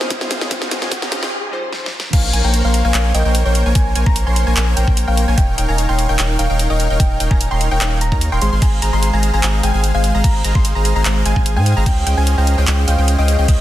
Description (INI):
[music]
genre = future bass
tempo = 148 BPM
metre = 4/4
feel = half-time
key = unclear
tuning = A4 = 440 Hz
[part]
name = glassy digital keys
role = accompaniment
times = 0.0-1.9 s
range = G3 to C5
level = -30 LUFS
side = left 2 dB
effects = chorus, sidechain pumping, digital delay
[part]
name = shimmering ambient pad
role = sustained chords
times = 0.0-1.3 s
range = Db2 to C5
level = -38 LUFS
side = equal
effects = none
[part]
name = dense compressed supersaw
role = riff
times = 0.0-13.6 s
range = Ab3 to C6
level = -22 LUFS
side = equal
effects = sidechain pumping, digital delay
[part]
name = dubstep drum kit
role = drums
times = 0.0-13.6 s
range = crash cymbal, handclaps, hi-hat, snare drum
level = -22 LUFS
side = equal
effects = small room ambience
[part]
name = riser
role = sound effects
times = 0.0-1.3 s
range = none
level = -28 LUFS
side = right 1 dB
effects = none
[part]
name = electronic kick drum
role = drums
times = 0.1-13.6 s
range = none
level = -15 LUFS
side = equal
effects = small room ambience
[part]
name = thumb-piano-like synth pluck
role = melody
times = 2.1-13.6 s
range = Db5 to C6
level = -24 LUFS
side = left 1 dB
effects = chorus, sidechain pumping, digital delay
[part]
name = wide unison pluck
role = arpeggios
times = 2.1-13.6 s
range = G5 to C6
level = -28 LUFS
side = right 1 dB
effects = sidechain pumping
[part]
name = saturated sub bass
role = bass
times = 2.1-13.6 s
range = Eb1 to Ab2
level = -16 LUFS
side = equal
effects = sidechain pumping
[sound]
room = light reverb, digital ambience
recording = dense, heavily limited modern master, high-pass filter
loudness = -14 LUFS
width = side -14 dB against mid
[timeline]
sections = 0.0-2.1 A section; 2.1-13.6 B section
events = build-up 0.0-2.1; drum fill 0.0-1.3, 1.7-2.1; riser 0.0-1.3; break 1.3-2.1; drop 2.1-13.6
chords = 0.0 Dbmaj9#11; 2.1 Bbm7; 5.4 Eb7; 8.4 Ab69; 11.9 Dbmaj9#11